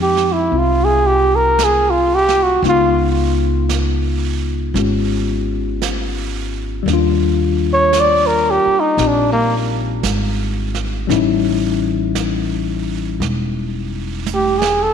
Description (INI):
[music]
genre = jazz ballad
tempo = 57 BPM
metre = 4/4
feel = swing 68% on 8ths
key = unclear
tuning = A4 = 437 Hz
[part]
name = breathy trumpet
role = melody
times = 0.0-14.9 s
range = Bb3 to D5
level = -14 LUFS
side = right 1 dB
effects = none
[part]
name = tine electric piano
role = accompaniment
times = 0.0-14.9 s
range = G3 to G4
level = -20 LUFS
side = left 12 dB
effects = medium stereo tremolo
[part]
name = upright bass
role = bass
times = 0.0-14.9 s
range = E1 to F2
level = -20 LUFS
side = right 1 dB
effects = none
[part]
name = jazz brush drum kit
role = drums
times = 0.2-14.9 s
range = brushed snare drum, hi-hat, snare drum, toms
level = -27 LUFS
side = right 10 dB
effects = none
[sound]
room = moderate echo chamber reverb, RT60 2.1 s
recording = 1960s-style stereo with parts hard left and right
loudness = -14 LUFS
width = side -7 dB against mid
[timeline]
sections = 0.0-14.9 A section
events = trumpet solo 0.0-14.9; drum fill 14.3-14.9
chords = 0.0 Fm9; 2.6 Db9; 6.9 Ebmaj9; 11.1 A7#11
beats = 0.53 1.59 | 2.65 3.70 4.76 5.82 | 6.87 7.93 8.98 10.04 | 11.10 12.16 13.21 14.27